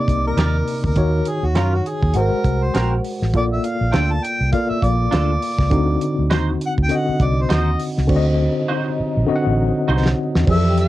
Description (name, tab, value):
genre	lush 1970s-style soul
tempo	101 BPM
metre	4/4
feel	swing 58% on 16ths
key	unclear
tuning	A4 = 440 Hz
part	mellow harmonica	melody	0.0-10.9 s	F4 to A5	-24 LUFS	equal	cassette tape
part	tine electric piano	accompaniment	0.0-10.9 s	C3 to F#5	-21 LUFS	left 2 dB	overdrive, fast stereo tremolo
part	vintage muted fingered electric bass	bass	0.1-10.9 s	Ab1 to Gb2	-19 LUFS	equal	none
part	damped 70s drum kit	drums	0.1-10.9 s	crash cymbal, hi-hat, kick drum, snare drum	-22 LUFS	equal	cassette tape
part	large celesta	texture	0.1-10.9 s	C5 to D6	-32 LUFS	right 2 dB	none
part	clean electric guitar	riff	0.4-10.1 s	C4 to D5	-24 LUFS	right 4 dB	ensemble chorus
part	warm French horn section	sustained chords	8.1-10.9 s	C3 to G4	-29 LUFS	right 1 dB	none
room	light reverb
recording	home recording on cassette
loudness	-16 LUFS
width	side -15 dB against mid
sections	0.0-8.1 A section; 8.1-10.5 B section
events	harmonica solo 0.0-8.1; drum fill 8.1-10.5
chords	0.0 Cm9; 1.0 Ebm7; 2.1 Ab9; 3.3 Bbmaj7; 5.7 D7b9